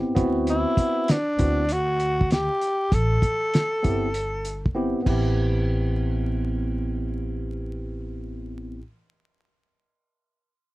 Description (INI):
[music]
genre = hip hop, jazz-hop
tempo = 98 BPM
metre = 4/4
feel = swing 65% on 16ths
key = A minor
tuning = A4 = 441 Hz
[part]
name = tine electric piano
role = accompaniment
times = 0.0-8.8 s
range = B3 to G4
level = -26 LUFS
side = right 1 dB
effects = wide subtle chorus
[part]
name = upright bass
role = bass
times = 0.2-8.8 s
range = G1 to D2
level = -26 LUFS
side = equal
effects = none
[part]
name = cloth-damped thuddy drum kit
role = drums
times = 0.2-5.2 s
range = crash cymbal, hi-hat, kick drum, snare drum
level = -24 LUFS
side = equal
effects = none
[part]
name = growling tenor saxophone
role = melody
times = 0.5-4.8 s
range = D4 to A4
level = -24 LUFS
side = equal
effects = none
[sound]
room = light reverb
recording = dry, close 1970s-style studio recording, vinyl crackle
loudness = -21 LUFS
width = side -18 dB against mid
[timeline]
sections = 0.0-5.4 A section; 5.4-7.8 B section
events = drum fill 4.8-5.4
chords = 0.2 D13; 2.9 Am7